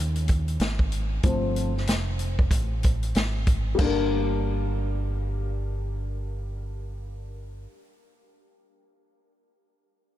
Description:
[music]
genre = hip hop, jazz-hop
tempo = 94 BPM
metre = 4/4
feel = swing 61% on 16ths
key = G minor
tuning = A4 = 441 Hz
[part]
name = deep dub fingered electric bass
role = bass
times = 0.0-7.7 s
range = F1 to Eb2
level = -28 LUFS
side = equal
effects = none
[part]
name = vintage drum kit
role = drums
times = 0.2-4.0 s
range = crash cymbal, hi-hat, kick drum, snare drum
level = -25 LUFS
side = equal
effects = none
[part]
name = dark baby grand piano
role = accompaniment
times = 1.2-7.7 s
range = F3 to Bb4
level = -30 LUFS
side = left 3 dB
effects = analog chorus
[sound]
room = small room reverb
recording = none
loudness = -23 LUFS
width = side -13 dB against mid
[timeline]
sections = 0.0-3.8 A section; 3.8-6.3 B section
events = grand piano solo 0.0-3.8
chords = 0.0 Ebsus4; 1.2 G9sus4; 3.8 Gm

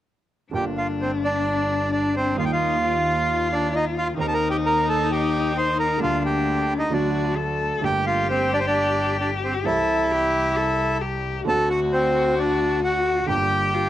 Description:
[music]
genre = tango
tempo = 132 BPM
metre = 4/4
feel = rubato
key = G minor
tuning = A4 = 438 Hz
[part]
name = bandoneon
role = melody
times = 0.5-13.9 s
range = C4 to C6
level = -22 LUFS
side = right 1 dB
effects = cassette tape
[part]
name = warm cello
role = second line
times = 0.5-13.9 s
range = D4 to A4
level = -26 LUFS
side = left 6 dB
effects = cassette tape, plate reverb
[part]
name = warm grand piano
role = accompaniment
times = 0.5-13.9 s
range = G1 to G4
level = -30 LUFS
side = right 6 dB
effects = cassette tape
[part]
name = bright double bass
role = bass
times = 0.5-13.9 s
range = G1 to Eb2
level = -29 LUFS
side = right 1 dB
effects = none
[sound]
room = moderate studio reverb, RT60 0.6 s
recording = home recording on cassette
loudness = -20 LUFS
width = side -12 dB against mid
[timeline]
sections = 0.5-13.9 A section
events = none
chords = 0.5 Gm7; 2.4 Ebadd9; 4.2 Cm7/Eb; 6.0 Gm/D; 6.9 D; 7.8 Gmadd9; 9.7 C; 11.5 D7; 13.3 Gm7

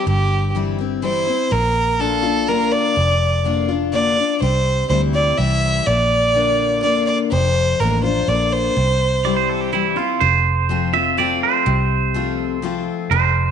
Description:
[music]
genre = honky-tonk and classic country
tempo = 124 BPM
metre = 3/4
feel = straight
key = unclear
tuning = A4 = 438 Hz
[part]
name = clear fiddle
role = melody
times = 0.0-9.7 s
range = G4 to E5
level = -19 LUFS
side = right 1 dB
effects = none
[part]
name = picked steel-string acoustic guitar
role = accompaniment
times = 0.0-13.5 s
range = F2 to F4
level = -22 LUFS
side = left 9 dB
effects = none
[part]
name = vintage muted fingered electric bass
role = bass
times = 0.1-13.5 s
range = F1 to D2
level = -21 LUFS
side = right 1 dB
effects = none
[part]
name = twangy electric guitar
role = second line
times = 9.2-13.5 s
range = E4 to E5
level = -19 LUFS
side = right 9 dB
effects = tape echo
[sound]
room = moderate echo chamber reverb, RT60 1.5 s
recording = 1960s-style stereo with parts hard left and right, nothing above 10.7 kHz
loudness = -16 LUFS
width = side -8 dB against mid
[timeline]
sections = 0.0-10.2 A section; 10.2-13.5 B section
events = clean electric guitar solo 10.2-13.5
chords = 0.0 C; 1.5 Bb; 4.4 C; 5.9 Bb; 8.8 C; 10.2 F

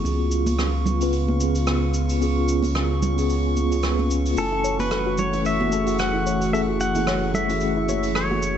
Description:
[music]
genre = sunset chillout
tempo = 111 BPM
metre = 4/4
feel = swing 56% on 16ths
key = F# minor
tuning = A4 = 440 Hz
[part]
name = mellow tine electric piano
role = accompaniment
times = 0.0-8.6 s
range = A3 to G#5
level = -26 LUFS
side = moving between left 4 dB and right 5 dB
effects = medium stereo tremolo, auto-pan, low-pass filter
[part]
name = airy breathy pad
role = sustained chords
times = 0.0-8.6 s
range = C#3 to F#4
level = -27 LUFS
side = equal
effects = chorus
[part]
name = warm sub bass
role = bass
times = 0.0-8.6 s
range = F#1 to C#2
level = -25 LUFS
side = equal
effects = none
[part]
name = soft brush drum kit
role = drums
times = 0.0-8.5 s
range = cabasa, hi-hat, rim click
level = -32 LUFS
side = right 1 dB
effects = none
[part]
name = drifting glass-harmonics texture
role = texture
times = 0.0-8.6 s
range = C#6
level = -34 LUFS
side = right 4 dB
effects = chorus, built-in reverb
[part]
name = congas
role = percussion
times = 0.5-8.4 s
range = none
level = -30 LUFS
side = right 3 dB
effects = none
[part]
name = pedal steel guitar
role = melody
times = 4.4-8.6 s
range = A4 to F#5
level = -25 LUFS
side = left 1 dB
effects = digital delay
[part]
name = soft round pluck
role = arpeggios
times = 4.5-8.4 s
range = E4 to C#5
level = -31 LUFS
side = left 3 dB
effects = chorus, ping-pong delay
[sound]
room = light reverb, studio reverb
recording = nothing above 8.0 kHz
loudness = -20 LUFS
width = side -9 dB against mid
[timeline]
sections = 0.0-8.6 A section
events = none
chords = 0.1 C#7; 4.4 F#m7

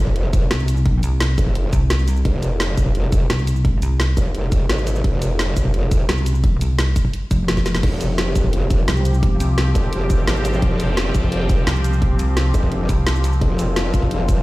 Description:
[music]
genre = dark technical drum and bass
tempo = 172 BPM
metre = 4/4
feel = straight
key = F minor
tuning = A4 = 440 Hz
[part]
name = growl bass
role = bass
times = 0.0-14.4 s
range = F1 to Ab1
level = -20 LUFS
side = equal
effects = chorus
[part]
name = electronic kick drum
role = drums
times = 0.1-14.4 s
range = none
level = -18 LUFS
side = equal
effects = none
[part]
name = drum and bass drum kit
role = drums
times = 0.2-14.4 s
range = crash cymbal, hi-hat, shaker, snare drum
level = -25 LUFS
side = equal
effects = none
[part]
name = pulsing pluck wobble bass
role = bass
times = 0.5-13.4 s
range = F1 to C2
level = -17 LUFS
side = equal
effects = chorus, tube saturation
[part]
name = sweeping resonant pad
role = sustained chords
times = 7.8-14.4 s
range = F3 to G4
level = -24 LUFS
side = equal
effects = chorus, sidechain pumping
[sound]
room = little or no reverb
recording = played on a big sound system in a bare room, stone room reverb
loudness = -16 LUFS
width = side -19 dB against mid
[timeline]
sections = 0.0-14.4 A section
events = drum fill 7.6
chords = 0.0 F5

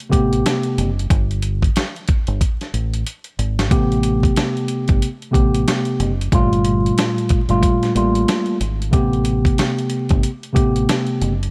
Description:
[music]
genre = hip hop, boom-bap hip-hop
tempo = 92 BPM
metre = 4/4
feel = swing 60% on 16ths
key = unclear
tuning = A4 = 440 Hz
[part]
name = dusty soul sampler-style drum kit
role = drums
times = 0.0-11.5 s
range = hi-hat, kick drum, snare drum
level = -21 LUFS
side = equal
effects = none
[part]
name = mellow tine electric piano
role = accompaniment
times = 0.1-11.3 s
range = Bb2 to G4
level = -21 LUFS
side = equal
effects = none
[part]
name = deep dub fingered electric bass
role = bass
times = 0.1-11.5 s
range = F#1 to A1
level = -23 LUFS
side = equal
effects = none
[sound]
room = light reverb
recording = vinyl crackle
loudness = -18 LUFS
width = mono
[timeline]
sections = 0.0-11.5 A section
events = drum fill 3.1-3.7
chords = 0.0 Am9; 1.1 Gsus2; 3.7 Am9; 6.3 Gm9; 8.9 Am9

